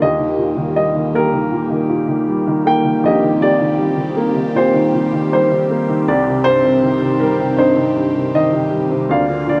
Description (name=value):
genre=acoustic folk-pop ballad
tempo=79 BPM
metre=4/4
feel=straight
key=unclear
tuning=A4 = 440 Hz
part: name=dark upright piano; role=melody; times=0.0-9.6 s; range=Bb1 to G5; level=-17 LUFS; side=equal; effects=none
part: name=phased analog pad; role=sustained chords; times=0.0-9.6 s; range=D3 to G4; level=-24 LUFS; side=equal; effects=phaser, chorus
room=wet studio reverb, RT60 0.6 s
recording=none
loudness=-16 LUFS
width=mono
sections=0.0-9.6 A section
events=none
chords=0.0 Eb; 6.1 Cm; 9.1 Bb/D